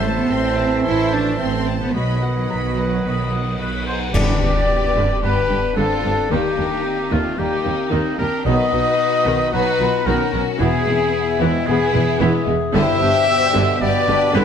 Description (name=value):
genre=cinematic, heroic adventure film score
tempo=112 BPM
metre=4/4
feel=straight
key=unclear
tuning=A4 = 440 Hz
part: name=rich symphonic violin section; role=melody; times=0.0-14.4 s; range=Bb3 to C6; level=-28 LUFS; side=left 2 dB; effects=none
part: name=clear oboe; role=second line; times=0.0-14.4 s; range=Eb4 to E5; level=-28 LUFS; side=right 2 dB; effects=none
part: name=mellow clarinet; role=second line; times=0.0-14.4 s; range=Bb3 to C5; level=-29 LUFS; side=left 2 dB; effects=none
part: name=mellow concert flute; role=second line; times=0.0-14.4 s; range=Eb5 to F#6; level=-29 LUFS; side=left 1 dB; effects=none
part: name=warm symphonic violin section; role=second line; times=0.0-14.4 s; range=G3 to F#5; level=-29 LUFS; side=left 2 dB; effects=none
part: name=rich symphonic viola section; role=accompaniment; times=0.0-14.4 s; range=D3 to C5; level=-27 LUFS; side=equal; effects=none
part: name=mellow French horn section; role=sustained chords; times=0.0-14.4 s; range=B2 to E5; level=-24 LUFS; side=left 5 dB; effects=none
part: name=warm trombone section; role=sustained chords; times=0.0-14.4 s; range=B2 to B3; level=-29 LUFS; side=right 4 dB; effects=none
part: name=concert harp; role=arpeggios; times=0.0-14.4 s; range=E2 to B5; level=-28 LUFS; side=left 12 dB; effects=none
part: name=warm trumpet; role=stabs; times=0.0-14.4 s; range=Eb4 to E5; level=-26 LUFS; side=right 2 dB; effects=none
part: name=rich studio double bass section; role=bass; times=0.0-14.4 s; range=E1 to Eb2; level=-24 LUFS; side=right 3 dB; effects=none
part: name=rich symphonic cello section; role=bass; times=0.0-14.4 s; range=Eb2 to E4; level=-24 LUFS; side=right 3 dB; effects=none
part: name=clash cymbals and concert bass drum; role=percussion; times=4.1-5.2 s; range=none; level=-26 LUFS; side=equal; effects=none
part: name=timpani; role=percussion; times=4.1-4.9 s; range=G2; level=-26 LUFS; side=left 2 dB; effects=none
room=moderate scoring stage reverb, RT60 1.6 s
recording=none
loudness=-16 LUFS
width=side -7 dB against mid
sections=0.0-4.1 A section; 4.1-14.4 B section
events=band accent 4.1-4.7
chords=0.0 Am; 1.9 B; 4.1 G; 6.3 Eb; 8.5 B; 10.6 E; 12.7 G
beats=0.31 0.85 1.40 | 1.94 2.50 3.05 3.60 | 4.14 4.69 5.23 5.77 | 6.31 6.84 7.38 7.92 | 8.46 9.00 9.53 10.07 | 10.60 11.14 11.67 12.21 | 12.74 13.28 13.81 14.35